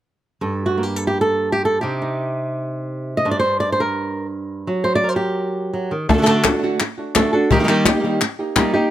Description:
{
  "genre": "flamenco",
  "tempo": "free time",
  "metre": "none",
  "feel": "none",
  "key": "G harmonic minor",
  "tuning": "A4 = 441 Hz",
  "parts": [
    { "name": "flamenco guitar", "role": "melody", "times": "0.4-8.9 s", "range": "G2 to Eb5", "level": "-18 LUFS", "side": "right 1 dB", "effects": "none" },
    { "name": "flamenco guitar", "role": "stabs", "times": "6.1-8.9 s", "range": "D3 to G4", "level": "-24 LUFS", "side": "right 3 dB", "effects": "none" },
    { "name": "cajon", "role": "percussion", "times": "6.1-8.9 s", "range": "none", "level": "-20 LUFS", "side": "left 4 dB", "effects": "none" },
    { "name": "palmas hand claps", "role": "percussion", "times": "6.3-8.7 s", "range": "none", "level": "-21 LUFS", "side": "left 4 dB", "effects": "none" }
  ],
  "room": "little or no reverb",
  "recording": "close, detailed microphones",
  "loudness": "-17 LUFS",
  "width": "side -12 dB against mid",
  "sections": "0.4-6.1 A section; 6.1-8.9 B section",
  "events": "none",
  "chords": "0.4 Gmadd9; 1.8 Cm; 3.3 Gm; 4.7 F#; 6.1 D; 7.5 Eb"
}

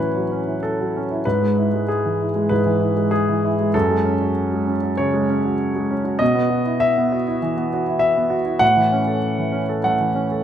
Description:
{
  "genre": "neoclassical minimalist piano",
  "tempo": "97 BPM",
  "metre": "4/4",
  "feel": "rubato",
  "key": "E major",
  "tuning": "A4 = 439 Hz",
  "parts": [
    { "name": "warm concert grand piano", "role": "solo", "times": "0.0-10.4 s", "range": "F#2 to F#5", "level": "-17 LUFS", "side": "equal", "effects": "none" }
  ],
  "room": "moderate plate reverb, RT60 3.1 s",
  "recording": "rough home demo mix",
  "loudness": "-17 LUFS",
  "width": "side -9 dB against mid",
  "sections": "0.0-10.4 A section",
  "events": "none",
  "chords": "0.0 A6; 1.2 E/G#; 3.7 F#madd9; 6.2 Bsus4; 8.6 A6"
}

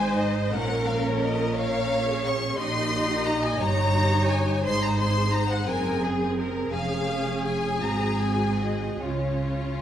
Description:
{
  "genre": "classical, slow romantic movement for string orchestra",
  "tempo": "45-61 BPM (dotted quarters)",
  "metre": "6/8",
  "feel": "rubato",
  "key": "unclear",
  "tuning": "A4 = 435 Hz",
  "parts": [
    { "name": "warm symphonic violin section", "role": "melody", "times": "0.0-9.8 s", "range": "Db5 to Db6", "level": "-29 LUFS", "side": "left 3 dB", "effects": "none" },
    { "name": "warm symphonic violin section", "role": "second line", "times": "0.0-9.8 s", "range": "F4 to Eb5", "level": "-29 LUFS", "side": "left 2 dB", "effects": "none" },
    { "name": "warm studio viola section", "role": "accompaniment", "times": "0.0-9.8 s", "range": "C4 to C5", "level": "-30 LUFS", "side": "right 1 dB", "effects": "none" },
    { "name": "dark symphonic double bass section", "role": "bass", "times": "0.0-9.8 s", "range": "F1 to Db2", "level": "-30 LUFS", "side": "right 2 dB", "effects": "none" },
    { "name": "rich symphonic cello section", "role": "bass", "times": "0.0-9.8 s", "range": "F2 to Db3", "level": "-29 LUFS", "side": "right 2 dB", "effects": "none" }
  ],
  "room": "wet concert hall reverb, RT60 2.2 s",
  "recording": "none",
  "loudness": "-23 LUFS",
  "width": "side -10 dB against mid",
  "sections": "0.0-9.8 A section",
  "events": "none",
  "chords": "0.0 Ab; 0.5 Bbm; 2.6 Eb7/Bb; 4.6 Ab; 5.7 Ab7/Gb; 6.7 Db/F; 7.8 Ab7; 9.0 Db"
}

